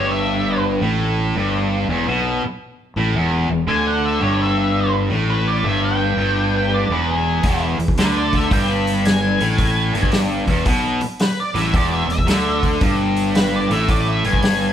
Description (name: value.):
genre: blues rock power trio and southern rock.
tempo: 112 BPM.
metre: 4/4.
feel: swing 66% on 8ths.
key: unclear.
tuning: A4 = 440 Hz.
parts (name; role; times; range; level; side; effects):
octave-fuzz lead guitar; melody; 0.0-14.7 s; G#4 to B5; -23 LUFS; left 1 dB; distortion.
distorted electric guitar; riff; 0.0-14.7 s; E2 to D3; -19 LUFS; equal; overdrive.
fuzz fingered electric bass; bass; 0.0-14.7 s; E1 to D2; -23 LUFS; equal; overdrive.
vintage drum kit; drums; 7.4-14.6 s; hi-hat, kick drum, snare drum; -20 LUFS; equal; none.
room: light reverb.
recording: band playing live in one room.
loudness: -16 LUFS.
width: side -10 dB against mid.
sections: 0.0-14.7 A section.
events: none.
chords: none.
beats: 0.46 | 1.00 1.53 2.07 2.61 | 3.14 3.68 4.22 4.75 | 5.29 5.83 6.36 6.90 | 7.44 7.97 8.51 9.05 | 9.59 10.12 10.66 11.20 | 11.74 12.28 12.81 13.35 | 13.89 14.42.